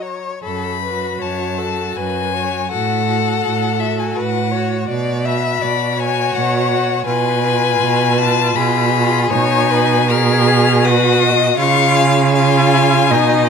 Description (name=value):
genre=classical, slow romantic movement for string quartet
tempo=81 BPM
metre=3/4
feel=uneven beats, rubato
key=F# minor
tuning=A4 = 438 Hz
part: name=rich violin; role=melody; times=0.0-13.5 s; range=E5 to E#6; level=-19 LUFS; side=left 10 dB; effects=none
part: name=rich violin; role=second line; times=0.0-13.5 s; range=G#4 to E#5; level=-20 LUFS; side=left 5 dB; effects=none
part: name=clear viola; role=accompaniment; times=0.0-13.5 s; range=F#3 to G#4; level=-21 LUFS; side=right 2 dB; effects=none
part: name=clear cello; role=bass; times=0.0-13.5 s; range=F#2 to C#3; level=-18 LUFS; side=right 5 dB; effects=none
room=light reverb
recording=none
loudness=-13 LUFS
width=side -6 dB against mid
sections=0.4-13.5 A section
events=none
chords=0.4 F#m; 2.7 F#m/A; 4.9 Bmadd9; 7.1 Fdim/Cb; 9.3 G#m/B; 11.6 C#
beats=| 0.43 1.22 1.97 | 2.72 3.44 4.16 | 4.89 5.62 6.35 | 7.06 7.80 8.56 | 9.31 10.11 10.86 | 11.59 12.35 13.11